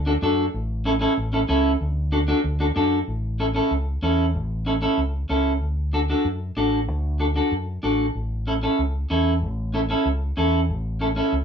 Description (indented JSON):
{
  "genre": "latin, cumbia",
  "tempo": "189 BPM",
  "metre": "4/4",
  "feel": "straight",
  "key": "A major",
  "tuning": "A4 = 439 Hz",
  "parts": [
    { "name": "fingered electric bass", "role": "bass", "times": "0.0-11.4 s", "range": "A1 to F#2", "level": "-25 LUFS", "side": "equal", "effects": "none" },
    { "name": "clean electric guitar", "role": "accompaniment", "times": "0.1-11.3 s", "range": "C#4 to A4", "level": "-22 LUFS", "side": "right 1 dB", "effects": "none" }
  ],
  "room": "moderate studio reverb, RT60 0.5 s",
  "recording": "minimal, uncompressed stereo recording",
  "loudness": "-20 LUFS",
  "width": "side -7 dB against mid",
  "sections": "0.0-3.1 A section; 3.1-11.4 B section",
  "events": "none",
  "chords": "0.0 D; 0.5 A; 1.8 D; 3.1 A; 5.6 D; 8.2 A"
}